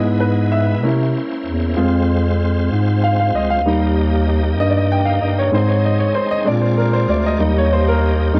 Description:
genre	gospel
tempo	64 BPM (dotted quarters)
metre	6/8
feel	straight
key	unclear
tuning	A4 = 440 Hz
part	clear grand piano	accompaniment	0.0-8.4 s	G3 to G5	-21 LUFS	equal	none
part	bright tonewheel organ	sustained chords	0.0-8.4 s	G#3 to Eb5	-28 LUFS	equal	fast rotary speaker, overdrive, chorus vibrato
part	mellow bass clarinet	bass	0.0-8.4 s	Db2 to C3	-19 LUFS	equal	none
room	small room ambience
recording	dry, close 1970s-style studio recording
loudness	-17 LUFS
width	mono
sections	0.0-8.4 A section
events	grand piano solo 0.0-8.4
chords	0.0 E/G#; 0.8 C7b9; 1.8 Fm; 3.7 Eb; 5.5 Ab; 6.5 Bb7; 7.4 Eb

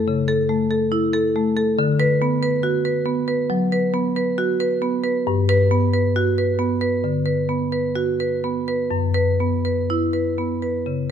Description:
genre	classical, contemporary piece for solo marimba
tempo	61-71 BPM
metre	4/4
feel	rubato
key	unclear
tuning	A4 = 440 Hz
part	marimba with medium hard mallets	solo	0.0-11.1 s	F#2 to B4	-18 LUFS	equal	none
room	moderate recital hall reverb, RT60 1.6 s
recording	close, detailed microphones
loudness	-18 LUFS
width	side -8 dB against mid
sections	0.0-11.1 A section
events	none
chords	0.0 F#m7 (rootless); 1.8 D6; 5.3 Gmaj7; 8.9 F#7sus4

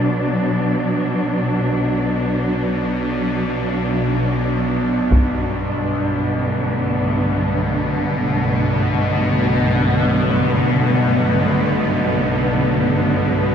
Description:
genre	dark ambient drone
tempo	free time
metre	none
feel	none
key	unclear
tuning	A4 = 439 Hz
part	dark symphonic cello section	sustained chords	0.0-13.5 s	G2 to D4	-18 LUFS	equal	none
part	bowed-like drone	drone	0.0-13.5 s	B1 to B2	-20 LUFS	equal	built-in reverb, phaser
part	taiko ensemble	percussion	5.1-5.3 s	none	-18 LUFS	equal	low-pass filter on perc
room	wet huge ambient reverb, RT60 7.1 s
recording	cassette tape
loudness	-16 LUFS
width	side -8 dB against mid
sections	0.0-13.5 A section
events	fade-in on synth drone 0.0-13.5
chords	0.0 Bm; 5.1 G/B

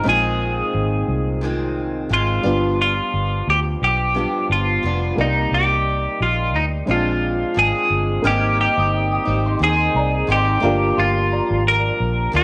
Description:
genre	indie pop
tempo	88 BPM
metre	4/4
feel	swing 55% on 16ths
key	unclear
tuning	A4 = 441 Hz
part	twelve-string electric guitar	melody	0.0-12.4 s	Eb4 to Bb4	-22 LUFS	equal	subtle chorus, slapback echo
part	dark upright piano	accompaniment	0.0-12.4 s	G3 to D5	-28 LUFS	equal	cassette tape
part	picked steel-string acoustic guitar	accompaniment	0.0-12.4 s	G2 to Eb4	-29 LUFS	equal	lush chorus, vibrato effect
part	vintage muted fingered electric bass	bass	0.1-12.4 s	F1 to Eb2	-24 LUFS	equal	none
part	soft synth bell	second line	8.2-12.0 s	D5 to Ab6	-30 LUFS	equal	ensemble chorus, slapback echo
room	light reverb, small room reverb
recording	none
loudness	-19 LUFS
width	mono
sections	0.0-8.2 A section; 8.2-12.4 B section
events	none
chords	0.1 Bb9sus4; 2.5 G7; 5.2 Cm9; 6.9 Bb7; 8.2 Abmaj7; 10.6 Gm7

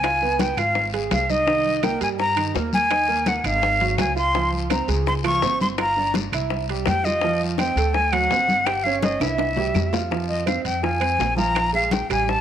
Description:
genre	Afro-Cuban jazz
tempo	167 BPM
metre	4/4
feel	straight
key	F minor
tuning	A4 = 436 Hz
part	breathy bright jazz flute	melody	0.0-12.4 s	Eb5 to Db6	-22 LUFS	left 1 dB	none
part	warm baby grand piano	accompaniment	0.0-12.4 s	Eb3 to G5	-26 LUFS	right 8 dB	none
part	upright bass	bass	0.0-12.4 s	G1 to G2	-28 LUFS	left 1 dB	none
part	bongos	percussion	0.0-12.4 s	none	-30 LUFS	left 12 dB	none
part	claves	percussion	0.0-12.3 s	none	-35 LUFS	right 12 dB	none
part	congas	percussion	0.0-12.4 s	none	-30 LUFS	left 2 dB	none
part	guiro	percussion	0.0-12.4 s	none	-36 LUFS	left 10 dB	none
part	timbales	percussion	0.0-12.3 s	none	-32 LUFS	right 9 dB	none
room	moderate echo chamber reverb, RT60 1.7 s, small room ambience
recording	1960s-style stereo with parts hard left and right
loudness	-19 LUFS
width	side -10 dB against mid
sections	0.0-10.1 A section; 10.1-12.4 B section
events	drum fill 9.0-10.1; flute solo 10.1-12.4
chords	0.0 Db9; 1.5 Cm7; 2.9 Eb5; 3.6 Ab5; 4.3 Dbmaj7; 5.8 Gm7; 6.5 C; 7.2 F5; 7.9 D7; 8.7 Eb13b9/G; 9.4 C; 10.1 Fm; 11.6 Bb5

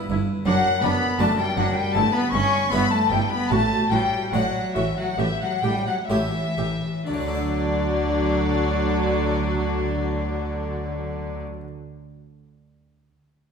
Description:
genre	classical, baroque-style concerto movement with solo episodes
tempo	61-83 BPM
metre	4/4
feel	straight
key	D major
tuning	A4 = 440 Hz
part	harpsichord	accompaniment	0.0-11.7 s	F#2 to E5	-33 LUFS	right 1 dB	none
part	rich studio viola section	accompaniment	0.1-11.4 s	F#3 to G4	-30 LUFS	right 1 dB	none
part	rich studio double bass section	bass	0.1-11.4 s	F#1 to D2	-29 LUFS	right 3 dB	none
part	warm chamber cello section	bass	0.1-11.4 s	F#2 to D3	-28 LUFS	right 2 dB	none
part	rich cello	melody	0.5-11.4 s	E3 to D4	-27 LUFS	left 1 dB	none
part	rich chamber violin section	melody	0.5-11.4 s	D5 to C#6	-30 LUFS	left 6 dB	none
part	warm chamber violin section	second line	0.5-11.4 s	D4 to C#6	-28 LUFS	left 3 dB	none
room	wet recital hall reverb, RT60 1.7 s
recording	heard from further back in the room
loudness	-20 LUFS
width	side -6 dB against mid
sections	0.0-7.1 A section; 7.1-11.0 B section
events	slowing down 0.0-7.1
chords	0.5 D/F#; 1.9 Em/G; 3.5 D/A; 5.2 A7; 7.1 D

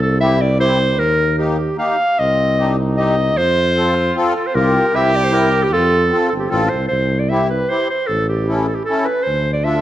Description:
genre	alpine folk, alpine dance band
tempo	153 BPM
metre	3/4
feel	straight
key	F major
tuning	A4 = 440 Hz
part	warm clarinet	melody	0.0-9.8 s	G4 to F5	-17 LUFS	right 1 dB	none
part	mellow tuba	bass	0.0-9.8 s	G1 to F2	-19 LUFS	equal	none
part	accordion	accompaniment	0.2-9.8 s	Bb3 to A4	-21 LUFS	left 2 dB	light tremolo tuning
part	mellow trumpet	second line	2.2-6.7 s	B3 to G4	-22 LUFS	right 2 dB	none
room	moderate recital hall reverb, RT60 1.4 s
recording	none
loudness	-14 LUFS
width	side -13 dB against mid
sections	0.0-6.9 A section; 6.9-9.8 B section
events	none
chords	0.0 C; 1.0 Ebadd9; 2.2 Cm; 3.4 F; 4.5 C7sus4; 4.9 C; 5.7 F; 6.9 C; 8.1 A7; 9.3 Dm

